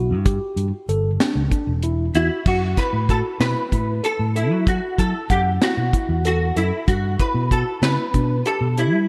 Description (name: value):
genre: progressive instrumental, band music in an uneven meter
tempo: 190 BPM (eighths)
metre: 7/8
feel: straight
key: F# phrygian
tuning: A4 = 440 Hz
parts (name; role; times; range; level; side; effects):
- mellow tine electric piano; arpeggios; 0.0-9.0 s; D4 to F#5; -29 LUFS; equal; none
- fingered electric bass; bass; 0.0-9.1 s; E1 to G3; -24 LUFS; equal; none
- deep reggae drum kit; drums; 0.3-8.9 s; crash cymbal, hi-hat, kick drum, snare drum; -24 LUFS; equal; gated reverb
- vintage hollow-body jazz guitar; melody; 2.2-9.1 s; E4 to B4; -26 LUFS; equal; ensemble chorus
room: moderate plate reverb, RT60 2.8 s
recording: bright 1980s-style digital production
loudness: -20 LUFS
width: mono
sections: 0.0-2.5 A section; 2.5-9.1 B section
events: none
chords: 0.0 G5; 2.5 F#m7; 6.9 Gadd9